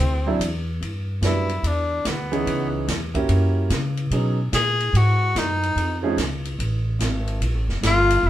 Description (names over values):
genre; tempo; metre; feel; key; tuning
jazz, small-group swing and bop; 145 BPM; 4/4; swing 65% on 8ths; unclear; A4 = 440 Hz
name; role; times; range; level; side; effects
bright tenor saxophone; melody; 0.0-8.3 s; B3 to G#4; -22 LUFS; left 2 dB; none
upright bass; bass; 0.0-8.3 s; F1 to C#3; -22 LUFS; equal; none
warm concert grand piano; accompaniment; 0.3-6.2 s; E3 to B4; -24 LUFS; right 3 dB; none
open jazz drum kit; drums; 0.4-8.2 s; hi-hat, kick drum, ride cymbal, snare drum; -29 LUFS; equal; none
room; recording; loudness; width
wet studio reverb, RT60 0.6 s; band playing live in one room; -20 LUFS; side -13 dB against mid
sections
0.8-8.3 A section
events
tenor saxophone solo 0.8-8.3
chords
0.0 D9; 0.8 Gmaj7; 2.5 C#m9; 3.3 F#7b9; 4.1 B69; 5.8 Faug; 7.4 Bbmaj7(no3)